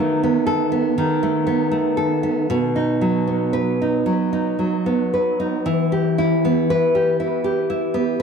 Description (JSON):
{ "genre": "romantic piece for solo classical guitar", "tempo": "74-83 BPM", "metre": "4/4", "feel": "rubato", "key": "unclear", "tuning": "A4 = 438 Hz", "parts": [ { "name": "nylon-string guitar", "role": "solo", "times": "0.0-8.2 s", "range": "B2 to B4", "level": "-17 LUFS", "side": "equal", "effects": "analog delay" } ], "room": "moderate echo chamber reverb, RT60 2.7 s", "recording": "echo-heavy mix", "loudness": "-17 LUFS", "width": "side -6 dB against mid", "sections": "0.0-8.2 A section", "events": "none", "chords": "0.0 B7/D#; 2.5 B; 5.7 Em", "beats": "0.23 0.97 1.72 | 2.49 3.28 4.07 4.86 | 5.66 6.44 7.19 7.94" }